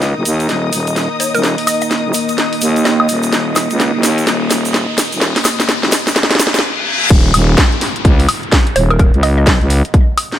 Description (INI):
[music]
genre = bass house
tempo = 127 BPM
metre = 4/4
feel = swing 62% on 16ths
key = unclear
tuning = A4 = 440 Hz
[part]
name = deep dark ambient pad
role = sustained chords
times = 0.5-6.6 s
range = Bb3 to Eb5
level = -21 LUFS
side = right 2 dB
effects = chorus, built-in reverb, sidechain pumping
[part]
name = growling FM bass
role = bass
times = 0.0-9.8 s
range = Eb1 to Eb2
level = -15 LUFS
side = equal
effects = sidechain pumping, high-pass filter
[part]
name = house drum kit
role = drums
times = 0.0-10.4 s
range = crash cymbal, hi-hat, snare drum, woodblock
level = -16 LUFS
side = equal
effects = none
[part]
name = egg shaker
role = percussion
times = 0.0-6.6 s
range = none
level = -23 LUFS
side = right 3 dB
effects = none
[part]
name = riser, reverse cymbal and downlifter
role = sound effects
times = 1.4-10.4 s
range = none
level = -22 LUFS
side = left 2 dB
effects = none
[part]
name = warm studio string section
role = texture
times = 0.0-6.6 s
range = Eb4 to Eb6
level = -22 LUFS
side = left 4 dB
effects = sidechain pumping
[part]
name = hollow square pluck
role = melody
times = 1.2-3.2, 8.8-9.4 s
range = Bb4 to Eb5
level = -20 LUFS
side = right 1 dB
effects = chorus, tape echo
[part]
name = electronic kick drum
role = drums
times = 7.1-10.1 s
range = none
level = -11 LUFS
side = equal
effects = none
[sound]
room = light reverb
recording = none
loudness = -11 LUFS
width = side -11 dB against mid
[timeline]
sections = 0.0-7.1 A section; 7.1-10.4 B section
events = build-up 0.0-7.1; drum fill 0.0-6.6; riser 1.4-6.6; reverse cymbal 6.2-7.1; stop 6.6-7.1; drop 7.1-10.4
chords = 0.0 Eb5; 7.1 Eb7(no3)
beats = 0.02 0.49 0.96 | 1.44 1.91 2.38 2.85 | 3.33 3.80 4.27 4.74 | 5.21 5.69 6.16 6.63 | 7.11 7.58 8.05 8.52 | 8.99 9.47 9.94